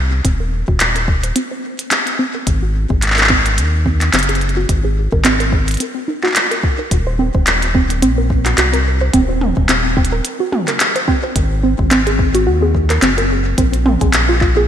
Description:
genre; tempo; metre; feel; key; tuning
IDM; 108 BPM; 4/4; swing 56% on 16ths; unclear; A4 = 440 Hz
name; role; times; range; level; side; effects
warbly dusty pluck; arpeggios; 0.0-14.6 s; C4 to C5; -19 LUFS; right 1 dB; chorus, ping-pong delay
rubbery square bass; bass; 0.0-14.7 s; Eb1 to Eb2; -17 LUFS; equal; tube saturation
electronic kick drum; drums; 0.2-14.5 s; none; -17 LUFS; equal; small room ambience
glitchy drum kit; drums; 0.2-14.5 s; handclaps, hi-hat, toms; -17 LUFS; equal; small room ambience, gated reverb, digital delay
room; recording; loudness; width
moderate lush hall reverb, RT60 2.5 s; bright 1980s-style digital production; -13 LUFS; side -9 dB against mid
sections
0.0-14.7 A section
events
filter sweep on synth arpeggio sound 0.0-14.7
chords
0.0 Eb5; 2.5 Ab7; 6.9 Eb5; 11.4 Ab7; 13.6 Bbsus2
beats
| 0.25 0.80 1.36 1.91 | 2.47 3.02 3.58 4.13 | 4.69 5.25 5.80 6.36 | 6.91 7.47 8.02 8.58 | 9.13 9.69 10.25 10.80 | 11.36 11.91 12.47 13.02 | 13.58 14.13

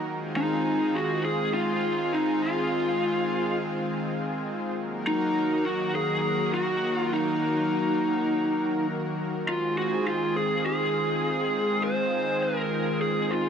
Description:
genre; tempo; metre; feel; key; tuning
synthwave; 102 BPM; 4/4; straight; F phrygian; A4 = 440 Hz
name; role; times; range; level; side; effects
lush unison pad; sustained chords; 0.0-13.5 s; Eb3 to Bb4; -28 LUFS; equal; chorus
lead guitar through a small cranked amp; melody; 0.4-13.5 s; Eb4 to C5; -26 LUFS; equal; overdrive, vintage 12-bit sampler grit, tape echo
room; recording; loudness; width
moderate lush hall reverb, RT60 2.6 s; dark, warm production; -24 LUFS; side -7 dB against mid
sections
0.0-13.5 A section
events
none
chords
0.1 Fm7; 4.8 Ebm; 9.5 Fm7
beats
| 0.07 0.66 1.25 1.83 | 2.42 3.01 3.60 4.19 | 4.78 5.36 5.95 6.54 | 7.13 7.72 8.30 8.89 | 9.48 10.07 10.66 11.25 | 11.83 12.42 13.01

